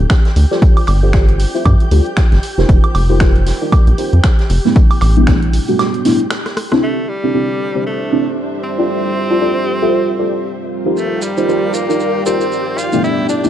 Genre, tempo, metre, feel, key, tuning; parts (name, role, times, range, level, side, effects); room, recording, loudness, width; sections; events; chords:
deep house; 116 BPM; 4/4; swing 57% on 16ths; A4 = 440 Hz
rubbery square bass; bass; 0.0-5.6 s; F1 to G2; -12 LUFS; equal
dark studio violin section; texture; 0.0-6.8, 11.0-13.5 s; G4 to G6; -29 LUFS; left 1 dB; sidechain pumping
electronic kick drum; drums; 0.1-5.4 s; -11 LUFS; equal; overdrive, vintage 12-bit sampler grit
punchy analog drum machine; drums; 0.1-6.8 s; finger snaps, hi-hat, rim click, woodblock; -22 LUFS; right 2 dB; overdrive, low-pass filter on snare, vintage 12-bit sampler grit, low-pass filter on hats, low-pass filter on perc
vintage drum kit; drums; 0.1-6.8 s; hi-hat, snare drum; -30 LUFS; right 2 dB; high-pass filter on hats, vintage 12-bit sampler grit, high-pass filter on snare, high-pass filter on room
deep mellow chord stab; stabs; 0.5-13.5 s; G3 to E5; -16 LUFS; equal; chorus, phaser, sidechain pumping, analog delay
edgy tenor saxophone; melody; 6.8-13.5 s; G3 to F4; -21 LUFS; equal; analog delay
deep dark ambient pad; sustained chords; 7.7-13.5 s; G3 to C5; -23 LUFS; right 2 dB; chorus, built-in reverb, sidechain pumping
dark chamber string section; texture; 6.8-13.5 s; D4 to E5; -25 LUFS; left 1 dB; sidechain pumping
maracas; percussion; 11.0-13.5 s; -29 LUFS; right 4 dB
light reverb, small room ambience; dark, warm production; -12 LUFS; side -11 dB against mid
0.0-6.8 A section; 6.8-13.5 B section
filter sweep on synth stab 0.0-6.8; break 5.8-6.8; drum fill 6.3-6.8
0.0 D7sus4; 0.6 G9sus4; 2.4 F9sus4; 4.8 A9sus4; 6.8 G9sus4; 10.7 F9sus4